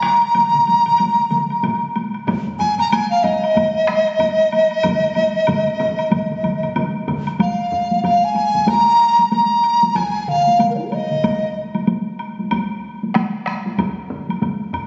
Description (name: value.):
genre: japanese traditional, taiko drum ensemble.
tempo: 94 BPM.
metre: 4/4.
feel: swing 60% on 16ths.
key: unclear.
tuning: A4 = 444 Hz.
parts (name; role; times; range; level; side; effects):
mellow hollow large dizi; melody; 0.0-11.6 s; Eb4 to Bb5; -18 LUFS; equal; none.
taiko ensemble; percussion; 0.0-14.6 s; none; -25 LUFS; equal; none.
taiko ensemble; percussion; 0.0-11.4 s; none; -30 LUFS; equal; none.
woodblock; percussion; 0.0-14.9 s; none; -31 LUFS; equal; none.
taiko ensemble; percussion; 1.0-14.0 s; none; -34 LUFS; equal; none.
taiko ensemble; percussion; 2.3-8.9, 13.1-14.9 s; none; -32 LUFS; equal; none.
room: wet concert hall reverb, RT60 1.9 s.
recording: recorded on a phone in the room, studio reverb, nothing above 7.8 kHz.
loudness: -18 LUFS.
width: mono.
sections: 0.0-7.4 A section; 7.4-14.9 B section.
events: none.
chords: none.